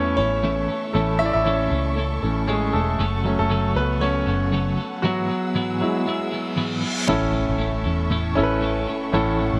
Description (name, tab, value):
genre	piano-driven pop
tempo	117 BPM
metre	4/4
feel	swing 56% on 16ths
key	unclear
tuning	A4 = 440 Hz
part	clear baby grand piano	accompaniment	0.0-9.6 s	A2 to E5	-25 LUFS	equal	none
part	warm studio string section	sustained chords	0.0-9.6 s	G#4 to E6	-36 LUFS	equal	none
part	twelve-string electric guitar	riff	0.0-9.6 s	F#2 to A4	-29 LUFS	equal	tremolo
part	vintage muted fingered electric bass	bass	0.0-9.6 s	E1 to E2	-27 LUFS	equal	none
part	reverse cymbal and impact	sound effects	6.4-9.1 s	none	-35 LUFS	equal	none
room	moderate plate reverb, RT60 3.6 s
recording	none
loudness	-22 LUFS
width	mono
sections	0.0-7.1 A section; 7.1-9.6 B section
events	grand piano solo 0.0-7.1; reverse cymbal 6.4-7.1; impact 7.1-9.1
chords	0.0 A; 3.0 F#m; 5.0 Eadd9/G#; 7.1 A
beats	0.43 | 0.95 1.46 1.97 2.48 | 2.99 3.51 4.02 4.53 | 5.04 5.55 6.07 6.58 | 7.09 7.60 8.11 8.62 | 9.13